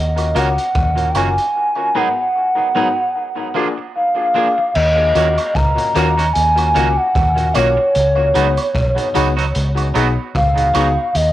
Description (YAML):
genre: lovers rock reggae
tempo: 75 BPM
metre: 4/4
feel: swing 57% on 16ths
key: Eb minor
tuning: A4 = 441 Hz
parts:
  - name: hollow clarinet-like synth lead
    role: melody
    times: 0.0-11.3 s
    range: Db5 to Bb5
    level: -16 LUFS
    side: equal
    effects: chorus, cassette tape, tape echo
  - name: vintage muted fingered electric bass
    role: bass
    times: 0.0-11.3 s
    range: Gb1 to Eb2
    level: -18 LUFS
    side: equal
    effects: none
  - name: crunchy breakbeat drum kit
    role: drums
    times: 0.2-11.3 s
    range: crash cymbal, hi-hat, kick drum, rim click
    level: -24 LUFS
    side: equal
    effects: none
  - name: woodblock and tambourine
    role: percussion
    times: 0.2-11.0 s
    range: none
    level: -30 LUFS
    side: right 8 dB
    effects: tape echo
  - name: twangy electric guitar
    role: stabs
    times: 0.3-10.9 s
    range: Eb3 to Ab4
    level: -24 LUFS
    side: right 6 dB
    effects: spring reverb, cassette tape, tape echo
  - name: clear baby grand piano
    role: accompaniment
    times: 0.4-10.9 s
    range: Ab2 to Bb4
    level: -24 LUFS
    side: left 7 dB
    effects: cassette tape, tape echo
room: light reverb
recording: home recording on cassette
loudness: -14 LUFS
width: side -14 dB against mid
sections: 0.0-4.8 A section; 4.8-11.3 B section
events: none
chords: 0.0 Ebm7; 1.6 Abm7; 3.2 Bb7; 4.8 Ebm7; 8.0 Db9sus4